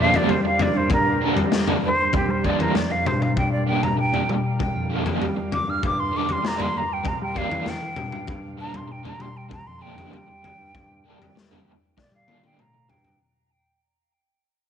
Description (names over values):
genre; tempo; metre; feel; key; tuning
psychedelic rock; 98 BPM; 4/4; straight; G minor; A4 = 440 Hz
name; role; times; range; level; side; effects
bright silver concert flute; melody; 0.0-13.2 s; G4 to F6; -25 LUFS; equal; tape echo
string machine, cellos; sustained chords; 0.0-13.2 s; G3 to F5; -32 LUFS; right 10 dB; ensemble chorus
crunchy overdriven guitar; riff; 0.0-12.9 s; D3 to D4; -27 LUFS; right 2 dB; tremolo
overdriven picked electric bass; bass; 0.0-13.2 s; F2 to G3; -29 LUFS; equal; none
raw garage drum kit; drums; 0.1-13.2 s; kick drum, snare drum, toms; -26 LUFS; left 3 dB; none
room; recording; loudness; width
moderate echo chamber reverb, RT60 2.2 s; 1960s-style stereo; -20 LUFS; side -8 dB against mid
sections
0.0-13.2 A section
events
fade-out 0.0-13.2; flute solo 0.0-13.2; drum fill 12.0-13.2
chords
0.0 Gm7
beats
0.29 | 0.91 1.52 2.13 2.75 | 3.37 3.98 4.59 5.21 | 5.82 6.44 7.05 7.67 | 8.28 8.90 9.51 10.12 | 10.74 11.35 11.97 12.58